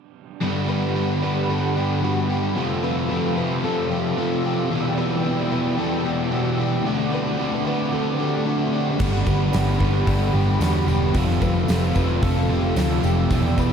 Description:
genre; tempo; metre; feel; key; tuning
rock, shoegaze and dream pop; 112 BPM; 4/4; straight; G major; A4 = 440 Hz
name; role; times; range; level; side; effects
hollow soft pad; sustained chords; 0.4-13.7 s; C4 to E6; -30 LUFS; equal; chorus
biting overdriven guitar; riff; 0.4-13.7 s; E2 to D4; -29 LUFS; right 1 dB; none
crunchy overdriven guitar; riff; 0.4-13.7 s; E2 to G4; -26 LUFS; right 8 dB; reverse reverb
thick fuzz guitar; riff; 0.4-13.7 s; E2 to D4; -24 LUFS; left 4 dB; distortion, lush chorus
direct-recorded clean electric guitar; arpeggios; 0.7-13.7 s; F4 to B4; -31 LUFS; left 3 dB; ensemble chorus, diffuse ambient delay
vintage muted picked electric bass; bass; 9.0-13.7 s; E1 to E2; -22 LUFS; equal; none
huge arena drum kit; drums; 9.0-13.7 s; crash cymbal, hi-hat, kick drum, snare drum; -25 LUFS; equal; none
tambourine; percussion; 9.0-13.7 s; none; -45 LUFS; right 12 dB; none
room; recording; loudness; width
wet cathedral reverb, RT60 5.7 s; dreamy mix soaked in reverb; -19 LUFS; side -7 dB against mid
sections
0.4-13.7 A section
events
none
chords
0.4 Gmaj7; 2.6 Fmaj7; 4.7 Em7; 6.8 D7; 9.0 Gmaj7; 11.2 Fmaj7

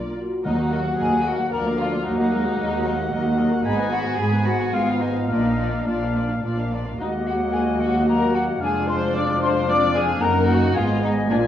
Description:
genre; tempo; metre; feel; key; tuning
quick classical-period movement for symphony orchestra; 104-115 BPM; 3/4; rubato; Eb minor; A4 = 441 Hz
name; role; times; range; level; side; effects
muted chamber violin section; melody; 0.0-11.5 s; D5 to Cb6; -34 LUFS; left 2 dB; none
muted chamber violin section; second line; 0.0-11.4 s; D4 to D5; -26 LUFS; left 3 dB; none
muted chamber viola section; accompaniment; 0.0-11.5 s; Gb3 to D5; -29 LUFS; equal; none
mellow French horn section; sustained chords; 0.0-11.5 s; F3 to Gb4; -28 LUFS; left 3 dB; none
muted chamber double bass section; bass; 0.0-11.5 s; F1 to Eb2; -28 LUFS; right 2 dB; none
muted symphonic cello section; bass; 0.0-11.5 s; D2 to Cb3; -26 LUFS; right 2 dB; none
clear oboe; second line; 0.5-11.5 s; F5 to Ab5; -30 LUFS; equal; none
dark clarinet; second line; 0.5-11.5 s; Bb3 to Eb4; -30 LUFS; equal; none
hollow concert flute; second line; 0.5-11.5 s; D5 to D6; -28 LUFS; left 2 dB; none
timpani; percussion; 0.5-1.2 s; Eb3; -28 LUFS; left 1 dB; none
room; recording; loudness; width
wet recital hall reverb, RT60 1.4 s; worn, warbling old tape, cassette tape, warbly pitch drift, studio ambience; -19 LUFS; side -10 dB against mid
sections
0.5-11.5 A section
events
none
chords
0.5 Ebm; 1.5 Bb/D; 2.1 Ebm; 3.7 Abm; 4.7 Fdim/Ab; 5.3 Bb; 7.0 Ebm; 8.6 Ddim/F; 10.2 Ebm/Gb; 10.8 Abm

